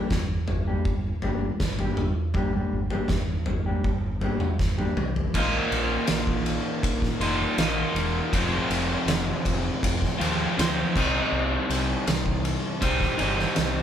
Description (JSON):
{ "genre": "quiet-loud alternative rock", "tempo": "80 BPM", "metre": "4/4", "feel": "straight", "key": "unclear", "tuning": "A4 = 439 Hz", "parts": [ { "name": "mellow electric guitar", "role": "arpeggios", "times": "0.0-5.0 s", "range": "G3 to G4", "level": "-30 LUFS", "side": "left 2 dB", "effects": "none" }, { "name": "growling fingered electric bass", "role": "bass", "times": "0.1-13.8 s", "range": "E1 to F2", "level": "-30 LUFS", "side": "equal", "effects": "overdrive" }, { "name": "oversized low-tuned drum kit", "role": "drums", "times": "0.1-13.7 s", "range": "crash cymbal, kick drum, ride cymbal, snare drum, toms", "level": "-26 LUFS", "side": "equal", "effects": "none" }, { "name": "crunchy overdriven guitar", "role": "riff", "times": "5.3-13.8 s", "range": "F2 to F4", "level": "-25 LUFS", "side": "equal", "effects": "none" } ], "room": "light reverb", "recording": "band playing live in one room", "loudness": "-23 LUFS", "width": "side -9 dB against mid", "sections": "0.0-5.3 A section; 5.3-13.8 B section", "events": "drum fill 4.6-5.3", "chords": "0.0 Gm; 5.3 Bbsus4; 8.3 Fm; 10.9 Cm", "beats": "0.11 0.86 1.61 | 2.36 3.10 3.85 4.60 | 5.35 6.09 6.84 7.59 | 8.33 9.08 9.83 10.57 | 11.32 12.07 12.81 13.56" }